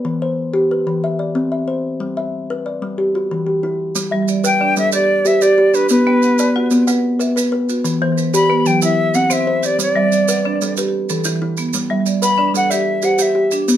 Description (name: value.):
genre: southern african traditional, mbira-style interlocking cycle.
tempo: 123 BPM (dotted quarters).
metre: 12/8.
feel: straight.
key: G major.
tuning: A4 = 437 Hz.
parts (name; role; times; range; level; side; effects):
kalimba; arpeggios; 0.0-13.8 s; E3 to G5; -17 LUFS; left 1 dB; none.
maracas; percussion; 4.0-13.8 s; none; -24 LUFS; right 8 dB; none.
marimba with hard mallets; arpeggios; 4.1-13.8 s; E3 to F#6; -20 LUFS; right 4 dB; slapback echo.
bright silver concert flute; melody; 4.5-13.5 s; B4 to B5; -17 LUFS; left 2 dB; none.
room: wet studio reverb, RT60 0.6 s.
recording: none.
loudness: -14 LUFS.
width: side -11 dB against mid.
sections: 0.0-4.0 A section; 4.0-13.8 A section.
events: none.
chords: 0.0 Em; 1.0 C; 2.0 G; 3.0 Em; 4.0 G; 5.9 Bm; 7.8 Em; 8.8 C; 9.8 G; 10.8 Em; 11.7 G.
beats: | 0.04 0.53 1.02 1.51 | 2.00 2.49 2.98 3.46 | 3.95 4.44 4.93 5.41 | 5.90 6.39 6.87 7.36 | 7.85 8.33 8.82 9.31 | 9.79 10.28 10.77 11.25 | 11.74 12.22 12.71 13.20 | 13.68.